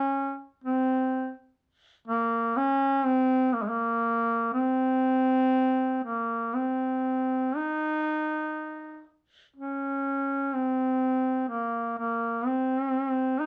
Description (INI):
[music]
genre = caucasian folk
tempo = 61 BPM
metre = 3/4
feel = rubato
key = C phrygian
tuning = A4 = 436 Hz
[part]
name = breathy duduk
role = solo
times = 0.0-13.5 s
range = Ab3 to Eb4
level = -27 LUFS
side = equal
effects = none
[sound]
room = moderate studio ambience, RT60 0.5 s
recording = none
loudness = -27 LUFS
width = mono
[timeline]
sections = 0.0-7.5 A section; 7.5-13.5 B section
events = none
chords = none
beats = 0.62 | 1.59 2.56 3.55 | 4.53 5.53 6.54 | 7.55 8.56 9.56 | 10.54 11.51 12.47 | 13.43